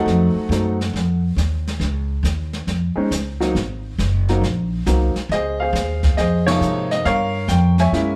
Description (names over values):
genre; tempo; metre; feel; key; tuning
jazz piano trio; 137 BPM; 4/4; swing 66% on 8ths; F minor; A4 = 439 Hz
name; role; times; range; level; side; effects
warm baby grand piano; melody; 0.0-8.2 s; C3 to Ab5; -23 LUFS; equal; plate reverb
upright bass; bass; 0.0-8.2 s; Gb1 to Ab2; -22 LUFS; equal; none
jazz brush drum kit; drums; 0.1-8.2 s; brushed snare drum, hi-hat, kick drum, ride cymbal, snare drum; -28 LUFS; equal; none
room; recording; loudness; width
moderate studio reverb, RT60 0.6 s; heard from further back in the room; -20 LUFS; mono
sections
0.0-8.2 A section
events
band accent 6.4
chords
0.1 F7b9; 1.8 Bbmadd11 (rootless); 3.6 Ab7; 5.3 Dbmaj13; 7.0 Gm7b5